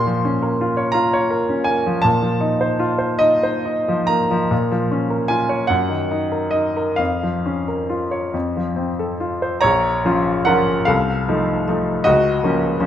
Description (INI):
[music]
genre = classical, romantic character piece for solo piano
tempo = 44-56 BPM (dotted quarters)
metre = 6/8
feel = rubato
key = Bb minor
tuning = A4 = 440 Hz
[part]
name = clear baby grand piano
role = solo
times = 0.0-12.9 s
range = Bb1 to C6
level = -17 LUFS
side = equal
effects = none
[sound]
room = moderate recital hall reverb, RT60 1.6 s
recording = none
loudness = -17 LUFS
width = side -10 dB against mid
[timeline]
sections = 0.0-9.6 A section; 9.6-12.9 B section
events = none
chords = 0.0 Bbm; 2.0 F7/Bb; 4.5 Bbm; 5.7 Ebm/Gb; 7.0 Bbm/F; 8.3 F; 9.6 Bbm; 10.9 F7/C; 12.1 Bbm/Db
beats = 0.96 | 2.05 3.22 | 4.51 5.71 | 6.99 8.34 | 9.64 10.88 | 12.07